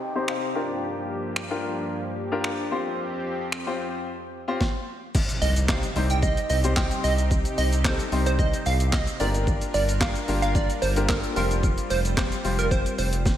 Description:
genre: dance-pop.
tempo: 111 BPM.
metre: 4/4.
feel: straight.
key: C minor.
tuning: A4 = 440 Hz.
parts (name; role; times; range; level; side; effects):
clear concert grand piano; accompaniment; 0.0-13.1 s; G3 to G5; -29 LUFS; left 3 dB; low-pass filter.
lush unison pad; sustained chords; 0.0-13.4 s; F2 to Bb4; -33 LUFS; equal; chorus, sidechain pumping, low-pass filter.
downlifter and impact; sound effects; 0.0-0.8, 5.1-7.3 s; none; -37 LUFS; right 1 dB; none.
boom bap sampler-style drum kit; drums; 0.3-13.4 s; crash cymbal, finger snaps, handclaps, hi-hat, kick drum, shaker, snare drum; -27 LUFS; equal; overdrive.
plucky unison lead; melody; 5.4-13.1 s; Bb4 to G5; -28 LUFS; right 3 dB; sidechain pumping, tape echo.
round analog bass; bass; 5.4-13.4 s; F1 to C2; -25 LUFS; equal; sidechain pumping.
room: moderate lush hall reverb, RT60 1.9 s, digital ambience.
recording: dreamy mix soaked in reverb.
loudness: -22 LUFS.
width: side -11 dB against mid.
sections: 0.0-5.1 A section; 5.1-13.4 B section.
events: grand piano fill 0.0-0.8; filter sweep 0.0-5.1; drop 5.1-13.4; impact 5.1-7.3.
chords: 0.0 Cm; 0.6 Gm7; 2.7 Fsus2; 5.1 Cm; 9.2 Gm7; 11.4 Fsus2.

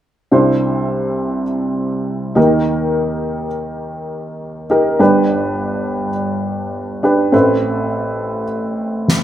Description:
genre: piano-driven pop.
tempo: 103 BPM.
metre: 4/4.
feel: swing 56% on 16ths.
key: unclear.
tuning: A4 = 445 Hz.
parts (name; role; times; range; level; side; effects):
dark upright piano; accompaniment; 0.3-9.2 s; G1 to C5; -15 LUFS; equal; none.
snare drum; drums; 9.1-9.2 s; none; -12 LUFS; left 1 dB; none.
room: moderate digital room reverb, RT60 1.1 s.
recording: rough home demo mix.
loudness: -15 LUFS.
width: side -11 dB against mid.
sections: 0.3-9.2 A section.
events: none.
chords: 0.3 Cadd9; 2.4 Eb; 5.0 G; 7.3 Amadd9.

